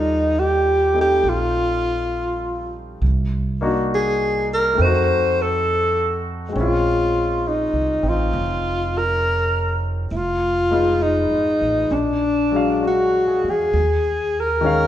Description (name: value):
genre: jazz ballad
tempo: 67 BPM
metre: 4/4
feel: swing 68% on 8ths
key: unclear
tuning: A4 = 440 Hz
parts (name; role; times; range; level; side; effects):
- dark alto saxophone; melody; 0.0-14.9 s; Db4 to C5; -19 LUFS; equal; none
- warm upright piano; accompaniment; 0.0-14.9 s; Eb3 to F5; -24 LUFS; left 2 dB; none
- upright bass; bass; 0.0-14.9 s; F1 to F2; -24 LUFS; right 1 dB; none
room: wet recital hall reverb, RT60 1.5 s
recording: recorded in a church or concert hall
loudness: -17 LUFS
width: side -11 dB against mid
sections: 0.0-13.7 A section; 13.7-14.9 B section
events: none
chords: 0.0 Ebmaj9#11; 3.0 Cm7b5; 4.8 F7b9; 6.6 Bbm9; 10.1 Fm7b5; 11.9 Bb7b13; 13.7 Eb9sus4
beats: 0.33 1.23 2.12 | 3.01 3.90 4.78 5.67 | 6.55 7.44 8.33 9.22 | 10.12 11.01 11.91 12.83 | 13.73 14.63